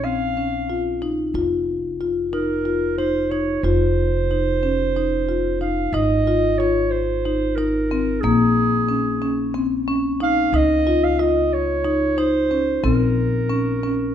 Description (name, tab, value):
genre	contemporary instrumental, chamber music in an uneven meter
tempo	183 BPM (eighths)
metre	7/8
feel	straight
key	Bb minor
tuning	A4 = 440 Hz
part	mellow clarinet	melody	0.0-14.1 s	Ab4 to F5	-23 LUFS	right 4 dB	none
part	marimba with soft mallets	arpeggios	0.0-14.1 s	Bb3 to F4	-21 LUFS	left 3 dB	none
part	upright bass	bass	0.0-14.1 s	F1 to Db2	-25 LUFS	right 1 dB	none
room	light reverb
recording	minimal, uncompressed stereo recording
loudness	-18 LUFS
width	side -9 dB against mid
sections	0.0-5.9 A section; 5.9-14.1 B section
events	none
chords	0.0 Bbmadd9; 1.4 F5; 5.9 Abadd9; 8.2 Bbm7; 10.5 Db; 12.8 Bbmadd9